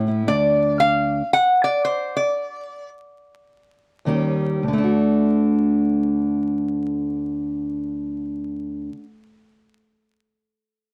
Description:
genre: acoustic country blues, solo or duo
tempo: 102-115 BPM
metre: 4/4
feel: swing 60% on 8ths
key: D major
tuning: A4 = 435 Hz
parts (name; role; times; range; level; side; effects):
- fingerpicked steel-string acoustic guitar; accompaniment; 0.0-9.1 s; D2 to G4; -22 LUFS; equal; none
- lap resonator guitar; melody; 0.3-2.9 s; C5 to F#5; -21 LUFS; equal; none
room: light reverb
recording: close, detailed microphones, vinyl crackle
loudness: -21 LUFS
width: mono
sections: 0.0-4.6 A section; 4.6-9.4 B section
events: slowing down 0.3-4.6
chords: 0.3 N.C.; 4.1 Eb7; 4.6 D

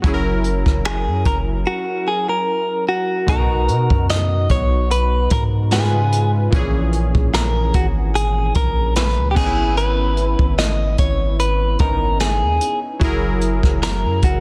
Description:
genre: contemporary R&B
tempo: 74 BPM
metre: 4/4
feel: swing 54% on 16ths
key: unclear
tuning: A4 = 440 Hz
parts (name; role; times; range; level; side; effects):
- warm analog keys; accompaniment; 0.0-14.4 s; A#2 to B4; -27 LUFS; equal; chorus
- long sustained 808-style bass; bass; 0.0-14.4 s; F#1 to B2; -22 LUFS; equal; none
- jazz brush drum kit; drums; 0.0-14.4 s; crash cymbal, finger snaps, hi-hat, kick drum, rim click, snare drum; -22 LUFS; equal; soft clipping on snare
- direct-recorded clean electric guitar; melody; 0.9-14.4 s; F#4 to D#5; -23 LUFS; equal; spring reverb
room: small room ambience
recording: dense, heavily limited modern master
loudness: -18 LUFS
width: mono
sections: 0.0-3.3 A section; 3.3-14.4 B section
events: none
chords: 0.0 F#7; 3.3 Bmaj7; 5.7 C#7; 6.5 F#9 (rootless); 9.4 C#m9/G#; 13.0 F#9

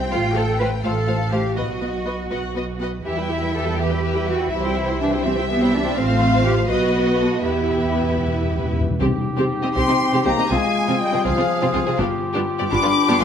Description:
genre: classical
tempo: 82 BPM (dotted quarters)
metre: 6/8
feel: rubato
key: E minor, C minor from 9.0 s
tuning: A4 = 439 Hz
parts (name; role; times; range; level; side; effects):
- warm symphonic violin section; melody; 0.0-13.2 s; G4 to D6; -26 LUFS; left 4 dB; none
- rich studio double bass section; bass; 0.0-13.2 s; G1 to E2; -25 LUFS; right 2 dB; none
- rich symphonic cello section; bass; 0.0-13.2 s; G2 to B4; -25 LUFS; right 1 dB; none
- warm symphonic violin section; second line; 0.1-13.2 s; C4 to G5; -27 LUFS; left 3 dB; none
- warm symphonic viola section; accompaniment; 0.1-13.2 s; E3 to G4; -25 LUFS; right 1 dB; none
- timpani; percussion; 7.5-9.7, 12.0-12.7 s; E2 to C3; -27 LUFS; left 1 dB; none
- dark clarinet; second line; 9.0-13.2 s; Eb4 to F4; -28 LUFS; left 6 dB; none
- mellow cor anglais; second line; 9.0-13.2 s; G4 to Ab4; -26 LUFS; right 1 dB; none
- hollow concert flute; second line; 9.8-13.2 s; C5 to B5; -26 LUFS; left 2 dB; none
- mellow French horn section; sustained chords; 9.8-13.2 s; F3 to D4; -24 LUFS; left 3 dB; none
room: moderate scoring stage reverb, RT60 1.5 s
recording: none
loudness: -18 LUFS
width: side -8 dB against mid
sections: 0.0-9.0 A section; 9.0-13.2 B section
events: timpani fill 7.4-9.0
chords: 0.1 F/A; 1.6 B; 3.1 Em; 4.5 C; 6.0 F/A; 6.7 B; 7.4 Em; 9.0 Cm; 10.5 Fm/C; 12.0 G7

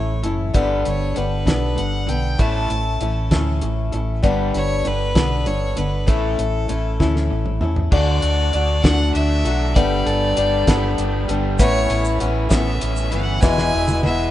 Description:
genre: folk rock and heartland rock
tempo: 65 BPM (dotted quarters)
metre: 6/8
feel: straight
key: A mixolydian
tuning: A4 = 439 Hz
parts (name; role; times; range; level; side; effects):
- bright fiddle; melody; 0.0-14.3 s; A4 to A5; -26 LUFS; equal; slapback echo
- picked swing-style acoustic guitar; accompaniment; 0.0-14.3 s; E2 to A4; -22 LUFS; left 4 dB; none
- overdriven electric guitar; riff; 0.0-14.3 s; E2 to A4; -27 LUFS; right 2 dB; none
- fingered electric bass; bass; 0.0-14.3 s; E1 to E2; -22 LUFS; equal; none
- cloth-damped thuddy drum kit; drums; 0.2-14.2 s; crash cymbal, hi-hat, kick drum, snare drum, toms; -20 LUFS; equal; none
- tonewheel organ; sustained chords; 7.9-14.3 s; G#4 to D6; -35 LUFS; right 2 dB; slow rotary speaker, chorus vibrato
- egg shaker; percussion; 11.6-14.0 s; none; -35 LUFS; right 6 dB; none
room: light reverb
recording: rough home demo mix, nothing above 10.5 kHz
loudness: -17 LUFS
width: side -13 dB against mid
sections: 0.0-7.9 A section; 7.9-14.3 B section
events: drum fill 7.0-7.9, 13.4-14.3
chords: 0.0 A; 0.5 Gadd9; 2.4 A; 4.2 Gadd9; 6.1 A; 7.9 D; 9.8 Gadd9; 11.6 Aadd9; 13.4 E

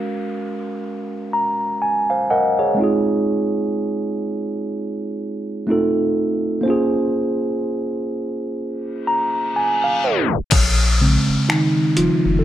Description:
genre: contemporary R&B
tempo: 62 BPM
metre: 4/4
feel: swing 58% on 16ths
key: Bb minor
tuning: A4 = 442 Hz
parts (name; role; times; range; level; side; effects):
- mellow tine electric piano; accompaniment; 0.0-12.4 s; Db3 to Bb5; -18 LUFS; right 1 dB; low-pass filter
- downlifter and reverse cymbal; sound effects; 0.0-12.4 s; none; -26 LUFS; left 4 dB; none
- saturated sub bass; bass; 10.5-12.4 s; F1 to Bb1; -19 LUFS; left 1 dB; none
- dusty soul sampler-style drum kit; drums; 10.5-12.2 s; crash cymbal, finger snaps, hi-hat, kick drum; -21 LUFS; left 2 dB; overdrive
room: light reverb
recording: tape stop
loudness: -17 LUFS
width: side -12 dB against mid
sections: 0.0-10.5 A section; 10.5-12.4 B section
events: filter sweep on tine electric piano 0.0-10.5; tine electric piano fill 0.8-2.8, 8.6-10.5; reverse cymbal 9.5-10.5; tape stop 10.0-10.5; tine electric piano solo 10.5-12.4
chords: 0.0 Gbmaj7; 2.8 Fm7; 5.7 F7; 6.6 Bbm7

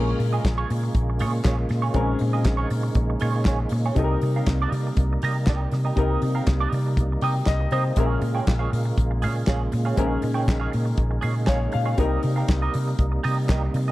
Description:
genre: disco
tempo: 120 BPM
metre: 4/4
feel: straight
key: Bb dorian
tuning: A4 = 440 Hz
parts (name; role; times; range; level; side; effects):
- clean electric guitar; accompaniment; 0.0-13.9 s; F4 to G5; -30 LUFS; right 6 dB; wah, spring reverb
- clear grand piano; accompaniment; 0.0-13.9 s; Bb2 to G5; -30 LUFS; left 4 dB; none
- percussive tonewheel organ; sustained chords; 0.0-13.9 s; C3 to F4; -31 LUFS; right 3 dB; overdrive, chorus vibrato, slow rotary speaker
- hollow-body short-scale fingered electric bass; bass; 0.0-13.9 s; Bb1 to C3; -24 LUFS; equal; none
- damped 70s drum kit; drums; 0.2-13.9 s; handclaps, hi-hat, kick drum, snare drum; -24 LUFS; equal; none
room: little or no reverb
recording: dry, close 1970s-style studio recording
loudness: -20 LUFS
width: side -17 dB against mid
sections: 0.0-13.9 A section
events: grand piano fill 7.0-8.0, 11.2-12.0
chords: 0.0 Bbm7; 4.0 Cm7; 8.0 Bbm7; 12.0 Cm7

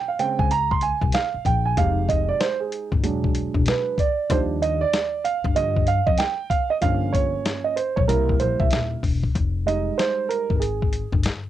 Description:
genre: hip hop, jazz-hop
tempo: 95 BPM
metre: 4/4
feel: swing 62% on 16ths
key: F minor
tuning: A4 = 440 Hz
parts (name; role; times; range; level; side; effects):
- dark concert grand piano; accompaniment; 0.0-11.2 s; Db3 to C6; -22 LUFS; right 6 dB; cassette tape
- dusty soul sampler-style drum kit; drums; 0.2-11.4 s; hi-hat, kick drum, snare drum; -24 LUFS; left 3 dB; none
- upright bass; bass; 0.4-11.2 s; Eb1 to G2; -25 LUFS; left 2 dB; none
room: light reverb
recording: home recording on cassette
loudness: -20 LUFS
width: side -12 dB against mid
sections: 0.0-9.3 A section; 9.3-11.5 A section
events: grand piano solo 0.0-9.3, 9.3-11.5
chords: 0.0 Bbm7; 1.8 Fm7; 3.0 E9; 4.3 Ebmaj7; 6.8 Gm7b5; 8.1 C7; 9.3 Fm7

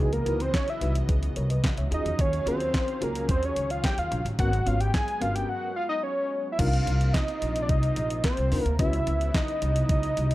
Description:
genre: early-eighties boogie funk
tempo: 109 BPM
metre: 4/4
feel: straight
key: unclear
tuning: A4 = 440 Hz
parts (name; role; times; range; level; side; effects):
- fat analog lead; melody; 0.0-10.3 s; Ab4 to Ab5; -28 LUFS; equal; chorus, slapback echo
- FM electric piano with tremolo; accompaniment; 0.0-9.3 s; Cb4 to Gb5; -35 LUFS; left 3 dB; none
- brassy analog pad; sustained chords; 0.0-10.3 s; C3 to F5; -39 LUFS; right 2 dB; chorus
- upright bass; bass; 0.0-10.3 s; G1 to E2; -27 LUFS; equal; none
- clean 12-bit digital drum machine; drums; 0.1-10.3 s; crash cymbal, handclaps, hi-hat, kick drum, snare drum; -27 LUFS; equal; none
room: little or no reverb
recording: dark, warm production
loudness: -24 LUFS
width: side -16 dB against mid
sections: 0.0-6.6 A section; 6.6-10.3 B section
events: analog synth lead solo 0.0-6.6; break 5.5-6.6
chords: 0.0 Dbm11; 1.9 Ebm11; 4.4 Abm11; 6.6 Cm11; 8.8 Dbm11

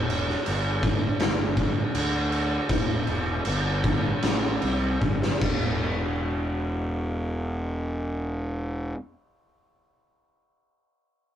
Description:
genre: stoner and doom metal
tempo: 74-82 BPM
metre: 4/4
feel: straight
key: E minor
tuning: A4 = 440 Hz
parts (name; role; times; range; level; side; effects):
- fuzz picked electric bass; bass; 0.0-8.9 s; E1 to D2; -27 LUFS; equal; overdrive
- oversized low-tuned drum kit; drums; 0.1-5.6 s; crash cymbal, kick drum, snare drum; -26 LUFS; equal; none
room: light reverb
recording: rough rehearsal-room recording, tube saturation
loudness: -24 LUFS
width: side -10 dB against mid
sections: 0.0-5.8 A section; 5.8-9.1 B section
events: slowing down 0.0-5.8; drum fill 5.0-5.8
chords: none

